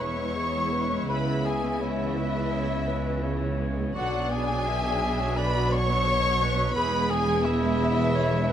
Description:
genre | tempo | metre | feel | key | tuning
cinematic, emotional film score for orchestra | 85 BPM | 4/4 | rubato | unclear | A4 = 437 Hz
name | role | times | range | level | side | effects
rich studio violin section | melody | 0.0-8.5 s | E5 to C#6 | -33 LUFS | left 3 dB | none
clear clarinet | second line | 0.0-8.5 s | G#4 to E5 | -34 LUFS | left 1 dB | none
concert flute | second line | 0.0-8.5 s | E5 to C#6 | -33 LUFS | left 1 dB | none
mellow cor anglais | second line | 0.0-8.5 s | E4 to C#5 | -33 LUFS | right 2 dB | none
warm symphonic violin section | second line | 0.0-8.5 s | E4 to C#5 | -35 LUFS | left 3 dB | none
rich symphonic viola section | accompaniment | 0.0-8.5 s | C#3 to E4 | -33 LUFS | right 2 dB | none
mellow French horn section | sustained chords | 0.0-8.5 s | F#3 to B3 | -33 LUFS | left 3 dB | none
rich symphonic cello section | bass | 0.0-8.5 s | E2 to C#3 | -32 LUFS | right 3 dB | none
rich symphonic double bass section | bass | 0.0-8.5 s | E1 to C#2 | -31 LUFS | right 1 dB | none
room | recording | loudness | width
moderate scoring stage reverb, RT60 1.7 s | none | -23 LUFS | side -10 dB against mid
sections
0.0-8.5 A section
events
none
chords
0.0 E; 1.1 C#m7; 4.0 Bm; 6.8 E

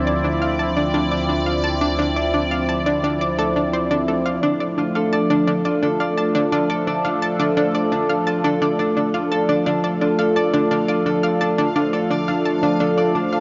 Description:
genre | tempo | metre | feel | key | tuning
ambient, sequencer-driven space music | 86 BPM | 4/4 | straight | D minor | A4 = 441 Hz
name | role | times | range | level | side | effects
sweeping resonant pad | sustained chords | 0.0-13.4 s | F3 to D5 | -23 LUFS | equal | chorus
fat analog bass | bass | 0.0-4.4 s | D2 | -30 LUFS | equal | none
analog pluck | riff | 0.1-13.4 s | D4 to A5 | -25 LUFS | equal | chorus, delay
concert harp | arpeggios | 4.4-13.4 s | D4 to D5 | -26 LUFS | equal | low-pass filter, delay
bubbling stepped-filter texture | texture | 8.4-13.4 s | F5 | -40 LUFS | equal | none
room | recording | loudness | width
wet huge ambient reverb, RT60 8.2 s | nothing above 7.5 kHz | -20 LUFS | mono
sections
0.0-4.4 A section; 4.4-13.4 B section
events
none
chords
0.0 Dm7; 4.4 Dm

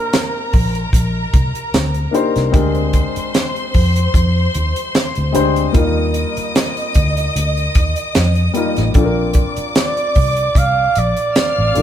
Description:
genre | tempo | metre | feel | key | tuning
lush 1970s-style soul | 75 BPM | 4/4 | swing 54% on 16ths | unclear | A4 = 440 Hz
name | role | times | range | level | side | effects
warm flugelhorn | melody | 0.0-0.9, 9.8-11.8 s | Bb4 to F5 | -18 LUFS | right 3 dB | none
warm studio string section | second line | 0.0-11.8 s | Bb4 to F6 | -23 LUFS | left 1 dB | none
dark baby grand piano | accompaniment | 0.0-11.8 s | G3 to C5 | -20 LUFS | left 3 dB | none
tight funk drum kit | drums | 0.1-11.8 s | hi-hat, kick drum, snare drum | -16 LUFS | equal | none
vintage muted fingered electric bass | bass | 0.5-11.8 s | A1 to F2 | -18 LUFS | equal | none
room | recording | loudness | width
moderate stone room reverb, RT60 1.4 s | band playing live in one room | -14 LUFS | side -10 dB against mid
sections
0.0-11.8 A section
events
none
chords
0.0 Cm9; 2.5 Bb13/D; 5.7 Ebmaj9; 9.0 Bbadd9

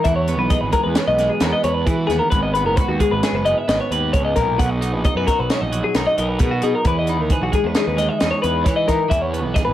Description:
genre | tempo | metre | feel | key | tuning
math rock and midwest emo | 133 BPM | 5/4 | straight | unclear | A4 = 439 Hz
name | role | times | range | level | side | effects
twelve-string electric guitar | accompaniment | 0.0-9.7 s | G#2 to B4 | -24 LUFS | right 5 dB | none
twelve-string electric guitar | arpeggios | 0.0-9.7 s | F#4 to F#5 | -20 LUFS | left 3 dB | wide subtle chorus
fuzz picked electric bass | bass | 0.0-9.7 s | F#1 to E3 | -23 LUFS | equal | overdrive
compact cocktail drum kit | drums | 0.0-9.7 s | hi-hat, kick drum, snare drum | -21 LUFS | equal | none
room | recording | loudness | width
moderate small room reverb, RT60 0.5 s | none | -16 LUFS | side -12 dB against mid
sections
0.0-9.7 A section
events
none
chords
0.1 C#m7; 2.3 G#m7; 4.6 Bmaj7; 6.9 Emaj7; 9.1 C#m7

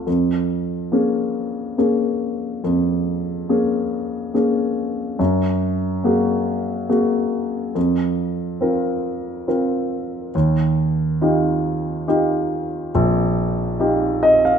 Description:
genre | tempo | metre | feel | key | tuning
folk | 70 BPM | 3/4 | straight | Bb minor | A4 = 442 Hz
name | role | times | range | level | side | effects
warm grand piano | solo | 0.0-14.6 s | Bb1 to F5 | -18 LUFS | equal | none
room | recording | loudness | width
moderate large studio reverb, RT60 1.2 s | minimal, uncompressed stereo recording | -18 LUFS | side -7 dB against mid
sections
0.0-10.3 A section; 10.3-14.6 A section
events
none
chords
0.1 Bbm7/F; 5.2 Gbadd9; 7.8 Fsus4; 10.3 Ebadd9

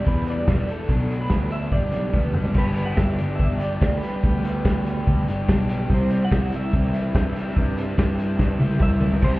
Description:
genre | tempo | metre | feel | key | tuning
indie rock | 144 BPM | 4/4 | straight | unclear | A4 = 440 Hz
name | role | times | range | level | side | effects
electric guitar through a small old amp | melody | 0.0-9.4 s | A4 to F#5 | -31 LUFS | right 1 dB | tremolo, slapback echo
biting overdriven guitar | riff | 0.0-9.4 s | G2 to G4 | -31 LUFS | left 5 dB | none
overdriven electric guitar | riff | 0.0-9.4 s | E2 to G4 | -31 LUFS | right 3 dB | ensemble chorus, slapback echo
fuzz picked electric bass | bass | 0.1-9.4 s | E1 to G2 | -24 LUFS | equal | overdrive
loose indie drum kit | drums | 0.1-9.3 s | crash cymbal, hi-hat, kick drum, snare drum, toms | -22 LUFS | equal | none
tube shaker | percussion | 9.2-9.3 s | none | -65 LUFS | right 3 dB | none
room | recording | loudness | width
small room ambience | heard muffled through a wall, club reverb, EQ, lossy compression artefacts | -19 LUFS | side -19 dB against mid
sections
0.0-2.6 A section; 2.6-9.2 B section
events
drum fill 2.1-2.6, 8.4-9.2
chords
0.0 Em7; 0.9 Bm7; 1.7 Gadd9; 2.6 G; 5.9 C

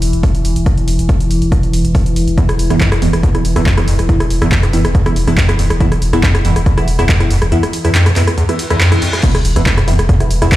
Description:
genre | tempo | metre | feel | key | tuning
driving peak-time techno | 140 BPM | 4/4 | straight | unclear | A4 = 440 Hz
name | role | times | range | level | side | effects
saturated sub bass | bass | 0.0-10.5 s | E1 | -17 LUFS | equal | tube saturation, sidechain pumping, low-pass filter
analog drone | drone | 0.0-9.3 s | E3 | -22 LUFS | left 1 dB | chorus, sidechain pumping
punchy analog drum machine | drums | 0.0-10.6 s | crash cymbal, handclaps, hi-hat, rim click | -19 LUFS | equal | overdrive, sidechain pumping on hats, sidechain pumping on cymbals
electronic kick drum | drums | 0.2-10.6 s | none | -14 LUFS | equal | none
overdriven acid bass | riff | 2.4-10.6 s | E2 to B2 | -16 LUFS | equal | lush chorus, sidechain pumping, tape echo
filtered dub chord stab | stabs | 2.4-10.5 s | E3 to E4 | -19 LUFS | right 2 dB | phaser, wide subtle chorus, sidechain pumping, tape echo
reverse cymbal and sub drop | sound effects | 8.5-10.6 s | none | -23 LUFS | left 1 dB | none
room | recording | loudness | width
light reverb, digital ambience | played on a big sound system in a bare room, stone room reverb | -10 LUFS | side -15 dB against mid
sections
0.0-9.2 A section; 9.2-10.6 B section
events
reverse cymbal 8.5-9.2; drop 9.2-10.6; impact 9.2-10.6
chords
0.0 E5

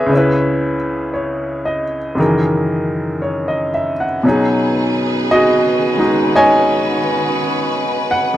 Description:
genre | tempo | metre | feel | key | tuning
jazz ballad | 58 BPM | 4/4 | swing 67% on 8ths | unclear | A4 = 440 Hz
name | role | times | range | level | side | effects
bright upright piano | accompaniment | 0.0-8.4 s | Db2 to G#5 | -14 LUFS | equal | none
clear symphonic string section | sustained chords | 4.2-8.4 s | D#3 to B4 | -20 LUFS | equal | none
room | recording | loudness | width
light reverb | close, detailed microphones | -14 LUFS | side -13 dB against mid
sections
0.0-8.4 A section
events
none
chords
0.1 Dbm7; 2.2 Gb13; 4.2 B69

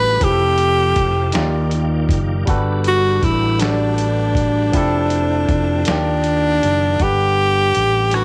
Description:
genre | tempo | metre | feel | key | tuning
slow six-eight R&B | 53 BPM (dotted quarters) | 6/8 | straight | unclear | A4 = 441 Hz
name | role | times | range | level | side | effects
warm tenor saxophone | melody | 0.0-8.2 s | D4 to B4 | -19 LUFS | equal | slapback echo
barky tine electric piano | accompaniment | 0.0-8.2 s | Eb3 to F#5 | -26 LUFS | equal | none
tonewheel organ | sustained chords | 0.0-7.0 s | Eb3 to D5 | -32 LUFS | equal | chorus vibrato, fast rotary speaker
fretless electric bass | bass | 0.0-8.2 s | F1 to Eb2 | -22 LUFS | equal | tube saturation
dusty soul sampler-style drum kit | drums | 0.2-8.2 s | hi-hat, kick drum, rim click, snare drum | -24 LUFS | equal | none
room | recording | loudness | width
little or no reverb | none | -17 LUFS | mono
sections
0.0-7.0 A section; 7.0-8.2 B section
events
kick muted 5.9-7.0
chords
0.2 Fmaj9; 1.3 Ebmaj9; 2.5 Gmaj9; 4.7 Fmaj9; 5.9 Ebmaj9; 7.0 Gmaj9

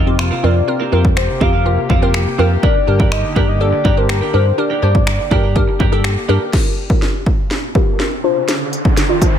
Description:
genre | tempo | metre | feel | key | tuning
dance-pop | 123 BPM | 4/4 | straight | G minor | A4 = 440 Hz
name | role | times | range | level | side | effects
soft octave-layered synth lead | melody | 0.0-6.0 s | Bb4 to F5 | -21 LUFS | left 3 dB | chorus, phaser, tape echo
chorused pulse-width pad | sustained chords | 0.0-6.5 s | C3 to G4 | -25 LUFS | left 2 dB | sidechain pumping
twelve-string electric guitar | riff | 0.0-6.5 s | C4 to Bb4 | -25 LUFS | right 6 dB | lush chorus, low-pass filter
organ-like FM bass | bass | 0.0-6.4 s | F2 to G2 | -16 LUFS | equal | sidechain pumping
glassy wavetable pluck | accompaniment | 0.1-9.4 s | C4 to D5 | -20 LUFS | left 1 dB | chorus, sidechain pumping, low-pass filter
house drum kit | drums | 0.2-9.3 s | crash cymbal, finger snaps, hi-hat, kick drum, snare drum | -16 LUFS | equal | none
riser | sound effects | 7.4-9.4 s | none | -24 LUFS | right 1 dB | none
room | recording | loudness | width
digital ambience | none | -13 LUFS | side -9 dB against mid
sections
0.0-6.5 A section; 6.5-9.4 B section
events
build-up 6.5-9.4; drum fill 6.5-9.4; filter sweep 6.5-9.4; riser 7.4-9.4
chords
0.0 Fsus4; 2.6 Gm; 6.5 Gm7; 8.2 Dm7

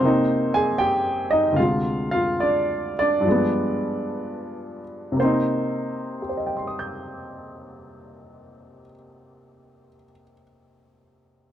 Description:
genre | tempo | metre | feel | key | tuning
solo jazz | 58-80 BPM | 4/4 | swing 67% on 8ths | C minor | A4 = 440 Hz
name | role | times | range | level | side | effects
warm upright piano | solo | 0.0-11.5 s | D2 to G6 | -21 LUFS | equal | none
room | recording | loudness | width
light reverb | dry, close 1970s-style studio recording | -20 LUFS | side -10 dB against mid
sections
0.0-5.2 A section; 5.2-9.3 B section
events
slowing down 0.0-5.2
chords
0.0 Cm7; 1.6 Dm7b5; 3.3 G7b9; 5.2 Cm7

